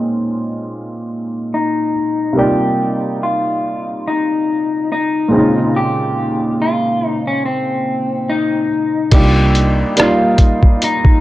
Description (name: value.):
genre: lo-fi hip hop.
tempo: 71 BPM.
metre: 4/4.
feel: swing 56% on 16ths.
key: C phrygian.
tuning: A4 = 439 Hz.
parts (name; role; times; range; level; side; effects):
warm upright piano; accompaniment; 0.0-11.2 s; Bb2 to D5; -18 LUFS; right 1 dB; cassette tape, low-pass filter.
electric guitar through a small old amp; melody; 1.5-11.2 s; C4 to G4; -17 LUFS; left 2 dB; low-pass filter, analog delay.
vintage muted fingered electric bass; bass; 9.1-9.8 s; C2; -13 LUFS; equal; none.
lo-fi sampler-style drum kit; drums; 9.1-11.2 s; crash cymbal, hi-hat, kick drum, rim click; -12 LUFS; equal; none.
room: light reverb.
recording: cassette tape.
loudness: -13 LUFS.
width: side -16 dB against mid.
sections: 0.0-9.1 A section; 9.1-11.2 B section.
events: filter sweep 0.0-9.1.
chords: 0.0 Bbm11; 2.4 Cm11; 5.3 Bbm11; 9.1 Cm11.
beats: 0.67 1.51 | 2.36 3.21 4.05 4.89 | 5.74 6.59 7.43 8.28 | 9.12 9.97 10.81.